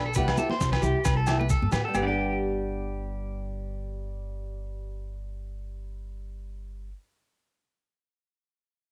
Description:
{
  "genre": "highlife guitar band",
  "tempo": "133 BPM",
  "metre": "4/4",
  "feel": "swing 55% on 16ths",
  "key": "G major",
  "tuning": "A4 = 438 Hz",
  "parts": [
    { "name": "flamenco guitar", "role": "accompaniment", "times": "0.0-7.0 s", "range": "G3 to G4", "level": "-35 LUFS", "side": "equal", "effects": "cassette tape" },
    { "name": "electric guitar at the edge of break-up", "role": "arpeggios", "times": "0.0-7.0 s", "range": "G4 to G5", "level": "-34 LUFS", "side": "equal", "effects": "phaser, cassette tape, analog delay" },
    { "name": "upright bass", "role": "bass", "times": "0.0-6.9 s", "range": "G1 to A2", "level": "-34 LUFS", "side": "equal", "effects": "none" },
    { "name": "maracas", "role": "percussion", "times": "0.1-2.2 s", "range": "none", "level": "-42 LUFS", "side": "equal", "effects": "none" },
    { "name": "dusty soul sampler-style drum kit", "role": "drums", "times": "0.2-1.8 s", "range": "kick drum, snare drum", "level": "-31 LUFS", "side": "equal", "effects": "cassette tape" },
    { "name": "agogo bells", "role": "percussion", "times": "0.3-2.1 s", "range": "none", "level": "-37 LUFS", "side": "equal", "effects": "none" },
    { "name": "congas", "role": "percussion", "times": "0.4-2.2 s", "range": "none", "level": "-35 LUFS", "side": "equal", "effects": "none" }
  ],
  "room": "light reverb",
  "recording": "home recording on cassette",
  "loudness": "-28 LUFS",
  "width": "mono",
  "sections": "0.0-1.9 A section; 1.9-5.5 B section",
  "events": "none",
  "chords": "0.1 Cmaj7; 1.9 G",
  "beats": "| 0.15 0.60 1.05 1.50 | 1.95 2.40 2.85 3.30 | 3.75 4.20 4.65 5.10"
}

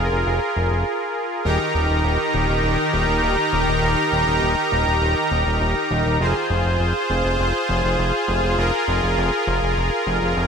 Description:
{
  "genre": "synthwave",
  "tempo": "101 BPM",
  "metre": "4/4",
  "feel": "straight",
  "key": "unclear",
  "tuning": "A4 = 438 Hz",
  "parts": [
    { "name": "soft supersaw", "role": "sustained chords", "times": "0.0-10.5 s", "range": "Eb3 to Bb5", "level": "-19 LUFS", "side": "equal", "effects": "none" },
    { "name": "fat analog bass", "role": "bass", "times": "0.0-10.5 s", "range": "Eb1 to F1", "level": "-22 LUFS", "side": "equal", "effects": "none" }
  ],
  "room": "moderate plate reverb, RT60 3.5 s",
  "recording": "bright 1980s-style digital production",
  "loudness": "-18 LUFS",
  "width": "side -6 dB against mid",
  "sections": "0.0-1.5 A section; 1.5-10.5 B section",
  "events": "break 0.9-1.5",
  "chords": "0.0 Fm; 1.5 Eb; 6.2 Fm",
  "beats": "0.26 0.86 | 1.45 2.05 2.64 3.23 | 3.83 4.42 5.02 5.61 | 6.20 6.80 7.39 7.99 | 8.58 9.18 9.77 10.36"
}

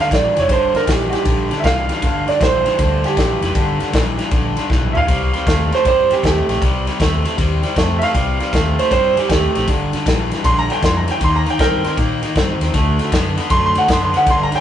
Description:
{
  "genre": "electric blues shuffle",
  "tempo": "157 BPM",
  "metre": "4/4",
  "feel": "swing 66% on 8ths",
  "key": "G minor",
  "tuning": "A4 = 439 Hz",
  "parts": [
    { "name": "bright upright piano", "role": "second line", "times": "0.0-14.6 s", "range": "F#4 to C6", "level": "-17 LUFS", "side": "right 3 dB", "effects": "none" },
    { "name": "overdriven semi-hollow guitar", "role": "riff", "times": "0.0-14.6 s", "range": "G2 to C4", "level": "-20 LUFS", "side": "left 2 dB", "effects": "none" },
    { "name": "natural country drum kit", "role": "drums", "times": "0.0-14.6 s", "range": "kick drum, ride cymbal, snare drum, toms", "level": "-19 LUFS", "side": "left 1 dB", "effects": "none" },
    { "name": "vintage muted fingered electric bass", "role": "bass", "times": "0.1-14.5 s", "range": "F1 to Bb2", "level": "-22 LUFS", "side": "equal", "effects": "none" }
  ],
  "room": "moderate studio reverb, RT60 0.6 s",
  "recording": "rough rehearsal-room recording, nothing above 10.3 kHz",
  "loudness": "-14 LUFS",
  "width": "side -10 dB against mid",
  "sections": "0.0-14.6 A section",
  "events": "upright piano solo 0.0-14.6; drum fill 4.7-5.1",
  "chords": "0.0 Gm; 5.1 Cm; 9.7 Gm; 11.2 Eb; 12.7 D",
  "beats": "0.11 | 0.49 0.88 1.26 1.64 | 2.02 2.40 2.79 3.17 | 3.55 3.93 4.32 4.70 | 5.08 5.46 5.85 6.23 | 6.61 7.00 7.38 7.76 | 8.14 8.53 8.91 9.29 | 9.68 10.06 10.44 10.82 | 11.21 11.59 11.97 12.36 | 12.74 13.12 13.50 13.88 | 14.27"
}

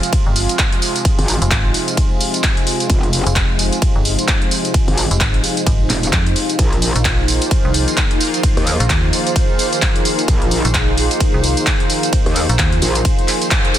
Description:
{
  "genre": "bass house",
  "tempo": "130 BPM",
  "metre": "4/4",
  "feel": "swing 59% on 16ths",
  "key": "F minor",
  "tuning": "A4 = 441 Hz",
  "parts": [
    { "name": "sweeping resonant pad", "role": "sustained chords", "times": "0.0-13.8 s", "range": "C3 to F4", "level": "-23 LUFS", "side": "equal", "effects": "chorus, sidechain pumping" },
    { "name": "big-room dance drum kit", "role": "drums", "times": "0.0-13.8 s", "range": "handclaps, hi-hat, ride cymbal, tambourine", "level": "-19 LUFS", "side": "equal", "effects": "none" },
    { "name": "granular cloud pad", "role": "texture", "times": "1.5-13.8 s", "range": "Eb4 to C5", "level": "-23 LUFS", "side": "equal", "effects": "built-in reverb, sidechain pumping" },
    { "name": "electronic kick drum", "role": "drums", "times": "0.1-13.6 s", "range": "none", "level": "-17 LUFS", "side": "equal", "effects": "none" },
    { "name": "metallic FM bass", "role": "bass", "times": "0.3-12.8 s", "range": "F1 to F2", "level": "-18 LUFS", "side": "equal", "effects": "tube saturation, sidechain pumping" },
    { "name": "metallic wobble bass", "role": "bass", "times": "1.2-13.0 s", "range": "Eb1 to Eb2", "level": "-18 LUFS", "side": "equal", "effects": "chorus, sidechain pumping" }
  ],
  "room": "light reverb, digital ambience",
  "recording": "dense, heavily limited modern master",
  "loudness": "-13 LUFS",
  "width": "side -11 dB against mid",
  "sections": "0.0-13.8 A section",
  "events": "band accent 13.5",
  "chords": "0.0 Fm; 6.6 Bbsus4",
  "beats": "0.13 0.59 | 1.05 1.51 1.97 2.44 | 2.90 3.36 3.82 4.28 | 4.74 5.21 5.67 6.13 | 6.59 7.05 7.51 7.97 | 8.44 8.90 9.36 9.82 | 10.28 10.74 11.21 11.67 | 12.13 12.59 13.05 13.51"
}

